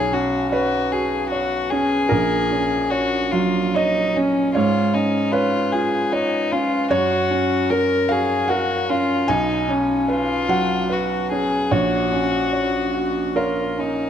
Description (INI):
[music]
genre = neoclassical piano and strings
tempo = 75 BPM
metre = 3/4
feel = rubato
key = F# major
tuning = A4 = 441 Hz
[part]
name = warm violin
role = melody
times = 0.0-14.1 s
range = C#4 to A#4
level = -22 LUFS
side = left 5 dB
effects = none
[part]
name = felt-muted upright piano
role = accompaniment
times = 0.0-14.1 s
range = A#1 to G#5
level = -20 LUFS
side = right 2 dB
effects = none
[sound]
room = moderate scoring stage reverb, RT60 1.7 s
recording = dark, warm production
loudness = -18 LUFS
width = side -9 dB against mid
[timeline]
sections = 0.0-14.1 A section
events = none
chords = 0.0 Bsus2; 2.1 F#/A#; 4.5 C#/G#; 6.9 F#; 9.3 Bsus2; 11.7 F#/A#